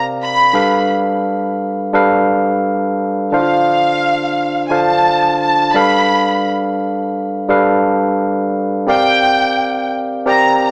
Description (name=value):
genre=soul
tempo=86 BPM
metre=4/4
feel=swing 54% on 16ths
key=unclear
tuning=A4 = 441 Hz
part: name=warm studio violin section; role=melody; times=0.0-10.7 s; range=F5 to B5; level=-17 LUFS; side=equal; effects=none
part: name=barky tine electric piano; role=accompaniment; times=0.0-10.7 s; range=C3 to G5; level=-17 LUFS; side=equal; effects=none
room=moderate plate reverb, RT60 3.1 s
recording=small speaker sound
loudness=-15 LUFS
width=mono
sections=0.0-10.7 A section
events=none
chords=0.0 C9sus4; 0.5 G7; 3.3 Dm7; 5.8 G7; 8.9 C9sus4